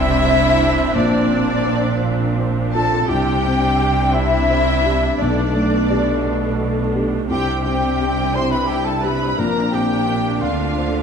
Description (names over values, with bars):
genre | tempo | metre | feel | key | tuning
cinematic | 57 BPM (dotted quarters) | 6/8 | rubato | C major | A4 = 441 Hz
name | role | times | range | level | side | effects
rich studio violin section | melody | 0.0-11.0 s | D4 to C5 | -28 LUFS | left 6 dB | none
rich studio violin section | second line | 0.0-11.0 s | D5 to C6 | -23 LUFS | left 2 dB | none
silver concert flute | second line | 0.0-11.0 s | D5 to C6 | -25 LUFS | left 2 dB | none
warm cor anglais | second line | 0.0-11.0 s | D4 to C5 | -27 LUFS | right 3 dB | none
felt-muted upright piano | accompaniment | 0.0-11.0 s | Bb1 to F5 | -23 LUFS | left 2 dB | none
rich symphonic viola section | accompaniment | 0.0-11.0 s | G3 to E4 | -26 LUFS | right 3 dB | none
mellow French horn section | sustained chords | 0.0-11.0 s | A3 to D4 | -26 LUFS | left 6 dB | none
rich symphonic cello section | bass | 0.0-11.0 s | Bb2 to D3 | -25 LUFS | right 4 dB | none
rich symphonic double bass section | bass | 0.0-11.0 s | Bb1 to D2 | -23 LUFS | right 3 dB | none
room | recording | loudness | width
wet scoring stage reverb, RT60 1.6 s | none | -16 LUFS | side -6 dB against mid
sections
0.0-11.0 A section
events
none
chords
0.0 Csus2; 0.9 Bbadd9; 3.1 Csus2; 5.2 Gadd9/B; 7.3 Csus2; 9.4 Bbadd9